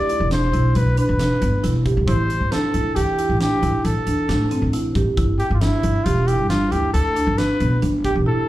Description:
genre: progressive instrumental, band music in an uneven meter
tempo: 136 BPM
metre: 7/4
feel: straight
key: unclear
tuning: A4 = 440 Hz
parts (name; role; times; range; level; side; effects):
- mellow trumpet; melody; 0.0-8.5 s; E4 to D5; -23 LUFS; equal; plate reverb, slapback echo
- marimba with medium mallets; arpeggios; 0.0-8.5 s; B3 to G4; -23 LUFS; right 1 dB; plate reverb, slapback echo
- upright bass; bass; 0.0-8.3 s; E1 to A2; -20 LUFS; equal; none
- huge arena drum kit; drums; 0.1-8.1 s; hi-hat, kick drum, snare drum; -29 LUFS; equal; none
room: light reverb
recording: live gig heard through the venue's PA, club reverb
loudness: -17 LUFS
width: side -15 dB against mid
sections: 0.0-8.5 A section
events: none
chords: 0.0 Em7; 2.1 A7(no3); 5.2 G5

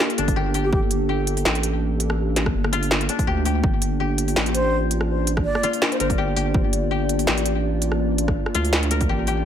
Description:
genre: half-time drum and bass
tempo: 165 BPM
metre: 4/4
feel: swing 55% on 16ths, half-time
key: G minor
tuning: A4 = 437 Hz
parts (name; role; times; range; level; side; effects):
- dark analog pad; sustained chords; 0.0-9.4 s; Bb3 to D5; -26 LUFS; right 1 dB; chorus, phaser, sidechain pumping
- koto; arpeggios; 0.0-9.4 s; D4 to Bb4; -28 LUFS; left 6 dB; vintage 12-bit sampler grit, ping-pong delay
- industrial drum kit; drums; 0.0-9.4 s; hi-hat, rim click, snare drum; -24 LUFS; equal; none
- saturated sub bass; bass; 0.2-9.4 s; G1 to D2; -24 LUFS; equal; none
- electronic kick drum; drums; 0.3-9.1 s; none; -23 LUFS; equal; none
- breathy concert flute; melody; 0.6-0.8, 4.5-6.1 s; G4 to D5; -27 LUFS; equal; ping-pong delay
room: light reverb, digital ambience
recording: none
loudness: -19 LUFS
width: side -9 dB against mid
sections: 0.0-9.4 A section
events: none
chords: 0.0 Gm

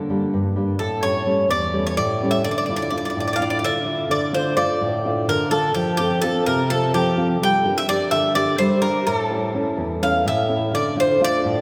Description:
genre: greek folk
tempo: 254 BPM (eighths)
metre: 7/8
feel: straight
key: D harmonic minor, D minor from 4.1 s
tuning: A4 = 440 Hz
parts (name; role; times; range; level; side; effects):
- nylon-string guitar; accompaniment; 0.0-11.6 s; E2 to Bb4; -24 LUFS; equal; none
- Greek bouzouki; melody; 0.8-11.6 s; G4 to G5; -23 LUFS; equal; none
room: wet church reverb, RT60 4.1 s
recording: recorded in a church or concert hall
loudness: -21 LUFS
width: mono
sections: 0.0-4.1 A section; 4.1-11.6 B section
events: none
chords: 0.0 Gm; 0.8 A7; 2.5 Dmadd9; 4.1 Dm; 5.8 F; 7.4 Gm; 9.1 A; 10.7 Dm

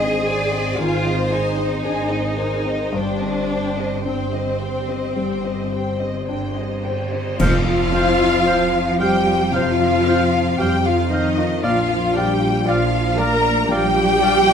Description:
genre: cinematic, emotional film score for orchestra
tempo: 53-59 BPM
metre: 4/4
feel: rubato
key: F dorian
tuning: A4 = 439 Hz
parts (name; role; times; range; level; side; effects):
- rich studio violin section; melody; 0.0-14.5 s; Eb5 to Bb5; -28 LUFS; left 2 dB; none
- warm studio violin section; second line; 0.0-14.5 s; Ab4 to Bb5; -26 LUFS; left 2 dB; none
- warm baby grand piano; accompaniment; 0.0-14.5 s; F2 to D5; -25 LUFS; left 4 dB; none
- warm studio viola section; accompaniment; 0.0-14.5 s; Eb4 to C5; -23 LUFS; left 1 dB; none
- clear studio cello section; bass; 0.0-14.5 s; Eb3 to Ab4; -25 LUFS; right 2 dB; none
- rich studio double bass section; bass; 0.0-14.5 s; G1 to F2; -26 LUFS; right 4 dB; none
- cymbal swell, clash cymbals and concert bass drum; percussion; 2.9-9.5 s; none; -28 LUFS; right 1 dB; none
- bright clarinet; second line; 7.4-14.4 s; C5 to D5; -30 LUFS; left 1 dB; none
- clear oboe; second line; 7.4-14.4 s; F5; -29 LUFS; right 2 dB; none
- concert flute; second line; 7.4-14.5 s; Eb5 to Bb5; -25 LUFS; equal; none
- dark French horn section; sustained chords; 7.4-14.5 s; F3 to D4; -26 LUFS; left 4 dB; none
- timpani; percussion; 7.4-9.0 s; F2; -25 LUFS; right 2 dB; none
room: moderate recital hall reverb, RT60 1.5 s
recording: none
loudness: -17 LUFS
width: side -7 dB against mid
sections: 0.0-7.4 A section; 7.4-14.5 B section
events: band accent 7.4-8.5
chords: 0.0 Ab; 2.9 Cm/G; 7.4 F5; 11.6 Bb

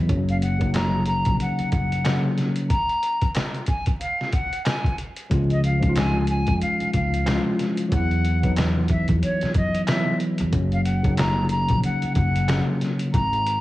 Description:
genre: hip hop, boom-bap hip-hop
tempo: 92 BPM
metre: 4/4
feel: swing 59% on 16ths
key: unclear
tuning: A4 = 441 Hz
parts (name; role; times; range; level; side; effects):
- tine electric piano; accompaniment; 0.0-13.2 s; Db3 to F4; -24 LUFS; equal; medium stereo tremolo, cassette tape, high-pass filter, low-pass filter
- upright bass; bass; 0.0-13.6 s; Gb1 to F#2; -24 LUFS; equal; none
- trip hop sampler-style drum kit; drums; 0.1-13.6 s; handclaps, hi-hat, kick drum, snare drum; -25 LUFS; equal; none
- silver concert flute; melody; 0.3-13.6 s; Db5 to Bb5; -27 LUFS; left 1 dB; high-pass filter, low-pass filter
room: little or no reverb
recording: dry, gritty hardware recording, vinyl crackle, small room ambience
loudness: -20 LUFS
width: side -16 dB against mid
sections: 0.0-13.6 A section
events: none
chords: 0.1 Gb; 2.7 N.C.; 5.3 Db; 7.9 Esus2; 10.5 Gb

